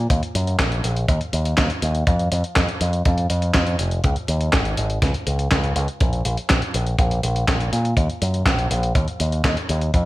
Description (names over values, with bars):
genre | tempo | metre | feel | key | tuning
italo disco | 122 BPM | 4/4 | straight | unclear | A4 = 441 Hz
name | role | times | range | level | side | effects
picked electric bass with an envelope filter | bass | 0.0-10.1 s | F1 to Bb2 | -21 LUFS | equal | digital delay
dusty soul sampler-style drum kit | drums | 0.1-10.0 s | handclaps, hi-hat, snare drum | -24 LUFS | equal | studio ambience, gated reverb
kick drum | drums | 0.1-10.0 s | none | -22 LUFS | equal | studio ambience
room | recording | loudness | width
studio ambience | vinyl crackle | -18 LUFS | side -18 dB against mid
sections
0.0-10.1 A section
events
none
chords
none